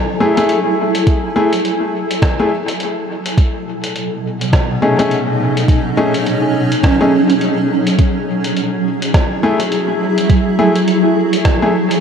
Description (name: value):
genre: ambient dub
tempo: 104 BPM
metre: 4/4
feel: swing 59% on 16ths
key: F# dorian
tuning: A4 = 438 Hz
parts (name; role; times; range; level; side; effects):
- granular cloud pad; sustained chords; 0.0-12.0 s; B2 to G#5; -16 LUFS; right 1 dB; built-in reverb
- clear upright piano; stabs; 0.2-11.7 s; A3 to G#4; -18 LUFS; left 2 dB; dub echo
- lo-fi sampler-style drum kit; drums; 0.4-12.0 s; hi-hat, rim click; -23 LUFS; equal; dub echo
- electronic kick drum; drums; 1.1-11.6 s; none; -13 LUFS; equal; overdrive
room: moderate huge ambient reverb, RT60 7.2 s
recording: dreamy mix soaked in reverb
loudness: -12 LUFS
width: side -7 dB against mid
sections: 0.0-12.0 A section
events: none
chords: 0.0 F#m9; 3.4 B13; 8.0 F#m9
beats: 0.49 | 1.07 1.65 2.22 2.80 | 3.38 3.95 4.53 5.11 | 5.68 6.26 6.84 7.42 | 7.99 8.57 9.14 9.72 | 10.30 10.88 11.45